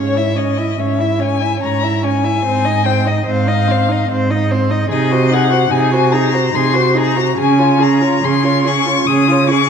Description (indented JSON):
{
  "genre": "classical, slow romantic movement for string quartet",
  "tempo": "72 BPM",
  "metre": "3/4",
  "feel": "rubato",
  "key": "Ab major, Db major from 4.9 s",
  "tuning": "A4 = 440 Hz",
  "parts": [
    { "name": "muted violin", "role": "melody", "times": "0.0-9.7 s", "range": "Db5 to Eb6", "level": "-18 LUFS", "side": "left 8 dB", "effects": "none" },
    { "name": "muted violin", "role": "second line", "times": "0.0-9.7 s", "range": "Ab4 to Fb5", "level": "-21 LUFS", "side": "left 4 dB", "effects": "none" },
    { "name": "muted viola", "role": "accompaniment", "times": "0.0-9.7 s", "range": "C4 to Gb4", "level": "-18 LUFS", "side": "right 2 dB", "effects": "none" },
    { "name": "muted cello", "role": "bass", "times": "0.0-9.7 s", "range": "Ab2 to Db3", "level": "-17 LUFS", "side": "right 4 dB", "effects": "none" }
  ],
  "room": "wet recital hall reverb, RT60 1.4 s",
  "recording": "dark, warm production",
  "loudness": "-12 LUFS",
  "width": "side -7 dB against mid",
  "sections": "0.0-9.7 A section",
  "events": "none",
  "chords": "0.0 Dbm/Ab; 2.5 Ab; 4.9 Ab7/C; 7.4 Db",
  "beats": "0.79 1.62 | 2.46 3.28 4.11 | 4.92 5.73 6.56 | 7.39 8.24 9.10"
}